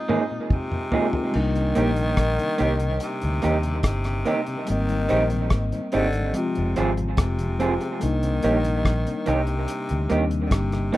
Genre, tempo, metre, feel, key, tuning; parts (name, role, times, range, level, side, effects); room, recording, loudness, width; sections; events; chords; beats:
lovers rock reggae; 72 BPM; 4/4; straight; C minor; A4 = 441 Hz
growling tenor saxophone; melody; 0.0-11.0 s; C3 to Eb4; -29 LUFS; left 1 dB; tape echo
mellow tine electric piano; accompaniment; 0.0-11.0 s; F3 to Eb5; -29 LUFS; left 2 dB; medium stereo tremolo, tape echo
mellow tonewheel organ; accompaniment; 0.1-11.0 s; F2 to C4; -35 LUFS; left 3 dB
electric guitar through a small old amp; stabs; 0.1-11.0 s; Bb3 to Ab4; -26 LUFS; right 3 dB; tape echo
cloth-damped thuddy drum kit; drums; 0.1-11.0 s; crash cymbal, hi-hat, kick drum, rim click, toms; -25 LUFS; equal
vintage muted fingered electric bass; bass; 1.4-10.9 s; F1 to Eb2; -25 LUFS; equal
moderate studio ambience, RT60 0.5 s; rough home demo mix; -21 LUFS; side -16 dB against mid
0.0-1.3 A section; 1.3-11.0 B section
drum fill 0.0-1.3
0.0 Bb7sus4; 1.3 Cm7; 4.7 Abmaj7; 6.3 Fm; 8.0 Cm7
0.51 | 1.34 2.18 3.01 3.84 | 4.68 5.51 6.34 7.18 | 8.01 8.85 9.68 10.51